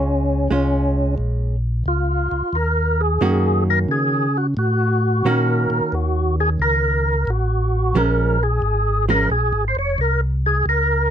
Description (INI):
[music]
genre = jazz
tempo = 89 BPM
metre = 4/4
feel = swing 67% on 8ths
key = Bb minor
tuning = A4 = 442 Hz
[part]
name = percussive tonewheel organ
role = melody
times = 0.0-11.1 s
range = Db4 to Db5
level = -20 LUFS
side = equal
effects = slow rotary speaker, overdrive, chorus vibrato
[part]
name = archtop guitar, miked and amplified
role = accompaniment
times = 0.0-9.3 s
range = Eb3 to Gb4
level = -23 LUFS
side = right 4 dB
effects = none
[part]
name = mellow tonewheel organ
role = bass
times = 0.0-11.1 s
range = F1 to Db3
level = -20 LUFS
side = equal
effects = slow rotary speaker
[sound]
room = little or no reverb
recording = close, detailed microphones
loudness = -17 LUFS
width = side -9 dB against mid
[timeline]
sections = 0.0-11.1 A section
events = none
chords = 0.0 Bbm7; 2.5 Ebm7; 8.0 Bbm7